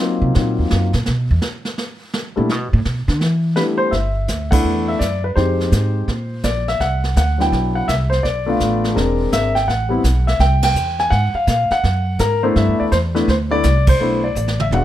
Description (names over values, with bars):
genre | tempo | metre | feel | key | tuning
jazz piano trio | 167 BPM | 4/4 | swing 65% on 8ths | G major | A4 = 440 Hz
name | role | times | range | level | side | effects
warm grand piano | melody | 0.0-14.8 s | Gb3 to Ab5 | -18 LUFS | left 2 dB | plate reverb
upright bass | bass | 0.2-14.8 s | E1 to E3 | -18 LUFS | equal | none
jazz brush drum kit | drums | 0.3-14.8 s | brushed snare drum, crash cymbal, hi-hat, kick drum, ride cymbal, snare drum, toms | -22 LUFS | right 2 dB | none
room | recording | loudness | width
moderate studio reverb, RT60 0.7 s | none | -15 LUFS | side -12 dB against mid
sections
0.0-3.9 A section; 3.9-14.8 B section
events
upright bass solo 0.0-3.9; band accent 4.5, 10.6, 13.8; drum fill 14.4-14.8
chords
0.0 Ebm69; 1.1 G6 (rootless); 3.9 G69; 5.4 Fm7; 6.1 Bbsus2; 6.8 Cmaj9#11; 8.2 Bm7b5; 9.0 Eaug7; 9.7 Am9; 11.1 Absus2; 12.6 G69 (rootless)